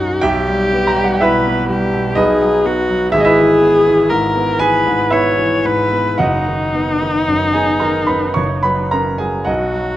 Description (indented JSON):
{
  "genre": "classical, romantic duo for viola and grand piano",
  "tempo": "53-63 BPM",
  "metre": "3/4",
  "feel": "rubato",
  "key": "B major",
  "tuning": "A4 = 440 Hz",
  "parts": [
    { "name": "warm viola", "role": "melody", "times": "0.0-10.0 s", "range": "D#4 to C#5", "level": "-16 LUFS", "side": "left 1 dB", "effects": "none" },
    { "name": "warm grand piano", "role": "accompaniment", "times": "0.0-10.0 s", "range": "F#1 to C#6", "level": "-15 LUFS", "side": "right 1 dB", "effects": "none" }
  ],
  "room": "moderate recital hall reverb, RT60 1.3 s",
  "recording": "close, detailed microphones",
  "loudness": "-12 LUFS",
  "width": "side -14 dB against mid",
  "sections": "0.0-10.0 A section",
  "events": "none",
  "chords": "0.2 Em/B; 2.2 B; 3.1 E/G#; 6.2 B/F#; 8.4 F#"
}